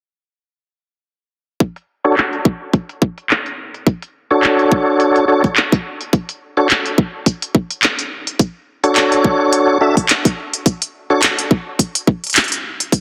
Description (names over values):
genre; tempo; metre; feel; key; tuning
glitch hop; 106 BPM; 4/4; swing 56% on 16ths; unclear; A4 = 441 Hz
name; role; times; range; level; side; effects
drum and bass drum kit; drums; 1.6-13.0 s; handclaps, hi-hat; -19 LUFS; equal; low-pass filter on hats, low-pass filter on snare
electronic kick drum; drums; 1.6-13.0 s; none; -16 LUFS; equal; high-pass filter on kick
tonewheel organ; stabs; 2.0-11.2 s; D4 to E5; -17 LUFS; equal; chorus vibrato, fast rotary speaker, sidechain pumping, low-pass filter, tape echo
room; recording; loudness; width
moderate lush hall reverb, RT60 1.7 s; heavily compressed radio sound, multiband compression; -16 LUFS; mono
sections
1.6-13.0 A section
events
filter sweep on drum 1.6-13.0; filter sweep on tonewheel organ 1.6-13.0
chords
1.6 Dmaj7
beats
| 1.60 2.17 2.74 3.30 | 3.87 4.43 5.00 5.57 | 6.13 6.70 7.26 7.83 | 8.40 8.96 9.53 10.09 | 10.66 11.23 11.79 12.36 | 12.92